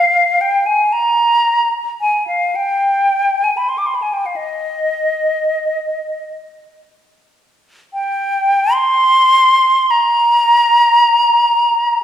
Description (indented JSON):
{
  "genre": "classical, free, expressive piece for unaccompanied flute",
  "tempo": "19-39 BPM (dotted quarters)",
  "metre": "6/8",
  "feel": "rubato",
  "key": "C minor",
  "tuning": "A4 = 443 Hz",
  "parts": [
    { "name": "hollow concert flute", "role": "solo", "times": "0.0-12.0 s", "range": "Eb5 to D6", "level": "-12 LUFS", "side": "equal", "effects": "none" }
  ],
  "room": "wet recital hall reverb, RT60 1.7 s",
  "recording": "recorded in a church or concert hall",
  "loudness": "-12 LUFS",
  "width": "side -10 dB against mid",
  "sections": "0.0-8.7 A section; 8.7-12.0 B section",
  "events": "none",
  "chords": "none",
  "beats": "| 0.94 2.58 | 4.37 6.29 | 8.74 10.43 | 12.01"
}